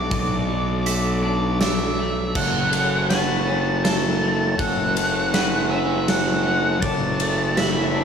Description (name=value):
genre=post-rock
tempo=80 BPM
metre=3/4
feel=straight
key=unclear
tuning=A4 = 438 Hz
part: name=octave-fuzz lead guitar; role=melody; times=0.0-8.0 s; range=D5 to B5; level=-25 LUFS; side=equal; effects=distortion, tape echo
part: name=clear woodwind section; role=sustained chords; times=0.0-8.0 s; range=F#3 to E5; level=-35 LUFS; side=left 2 dB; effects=none
part: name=clean electric guitar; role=arpeggios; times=0.0-8.0 s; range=F#2 to F#4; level=-27 LUFS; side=left 2 dB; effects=spring reverb, tape echo
part: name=twangy electric guitar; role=arpeggios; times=0.0-8.0 s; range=A4 to E5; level=-33 LUFS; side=right 4 dB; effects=spring reverb, tape echo
part: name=fuzz fingered electric bass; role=bass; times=0.0-8.0 s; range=F#1 to B1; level=-24 LUFS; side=right 1 dB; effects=overdrive
part: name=big rock drum kit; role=drums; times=0.1-7.7 s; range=crash cymbal, hi-hat, kick drum, ride cymbal, snare drum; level=-24 LUFS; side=equal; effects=none
room=light reverb, small room ambience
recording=none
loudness=-18 LUFS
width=side -7 dB against mid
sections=0.0-2.4 A section; 2.4-8.0 B section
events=none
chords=0.0 Bm7; 2.4 F#m; 6.8 Dadd9/F#